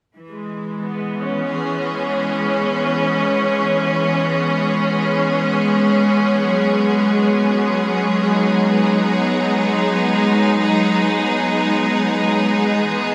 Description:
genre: ambient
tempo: free time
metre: none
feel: none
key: G# minor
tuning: A4 = 439 Hz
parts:
  - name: clear symphonic string section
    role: sustained chords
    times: 0.2-13.1 s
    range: E3 to G#4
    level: -18 LUFS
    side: equal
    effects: none
room: wet huge ambient reverb, RT60 5.4 s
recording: none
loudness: -18 LUFS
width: mono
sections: 0.2-13.1 A section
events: none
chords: 0.2 C#m7; 6.5 G#m7

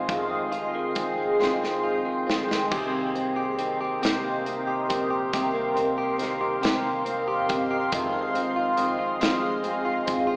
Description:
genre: six-eight pop ballad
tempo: 46 BPM (dotted quarters)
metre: 6/8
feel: straight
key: C minor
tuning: A4 = 440 Hz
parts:
  - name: direct-recorded clean electric guitar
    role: accompaniment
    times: 0.0-10.4 s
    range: F2 to G4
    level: -31 LUFS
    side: equal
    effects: none
  - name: shimmering ambient pad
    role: sustained chords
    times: 0.0-10.4 s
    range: Ab4 to C6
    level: -30 LUFS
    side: equal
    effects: chorus, built-in reverb, phaser
  - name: fingerpicked steel-string acoustic guitar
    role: arpeggios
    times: 0.0-10.4 s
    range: F2 to G4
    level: -34 LUFS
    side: equal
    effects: none
  - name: upright bass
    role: bass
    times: 0.0-10.4 s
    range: F1 to C2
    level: -47 LUFS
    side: equal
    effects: none
  - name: modern studio drum kit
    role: drums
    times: 0.1-10.3 s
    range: crash cymbal, hi-hat, kick drum, snare drum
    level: -32 LUFS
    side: equal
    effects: none
room: wet recital hall reverb, RT60 1.6 s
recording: recorded in a church or concert hall, AM radio sound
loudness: -26 LUFS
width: mono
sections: 0.0-2.7 A section; 2.7-10.4 B section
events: drum fill 1.4-2.7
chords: 0.0 Fm7; 2.7 Cm7; 7.9 Fm7

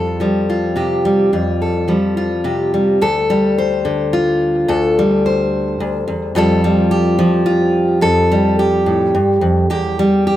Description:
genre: folk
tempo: 72 BPM (dotted quarters)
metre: 6/8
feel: straight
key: D minor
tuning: A4 = 440 Hz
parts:
  - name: fingerpicked steel-string acoustic guitar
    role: solo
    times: 0.0-10.4 s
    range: D2 to C5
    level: -13 LUFS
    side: equal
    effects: analog delay
room: light reverb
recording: none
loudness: -13 LUFS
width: side -13 dB against mid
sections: 0.0-3.0 A section; 3.0-10.4 B section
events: none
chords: 0.0 Fadd9; 3.0 Dm; 6.4 Fadd9; 9.7 Dsus4 (rootless)

